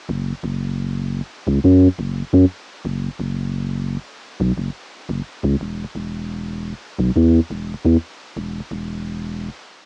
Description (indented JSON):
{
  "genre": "IDM",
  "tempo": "87 BPM",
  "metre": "4/4",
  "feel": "straight",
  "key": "unclear",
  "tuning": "A4 = 440 Hz",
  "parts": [
    { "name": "warm sub bass", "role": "bass", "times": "0.1-9.5 s", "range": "E1 to F#2", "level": "-21 LUFS", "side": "equal", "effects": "none" }
  ],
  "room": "little or no reverb",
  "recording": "small speaker sound",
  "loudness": "-18 LUFS",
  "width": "side -40 dB against mid",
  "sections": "0.1-9.9 A section",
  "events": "filter sweep on sub bass 0.1-9.9",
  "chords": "none"
}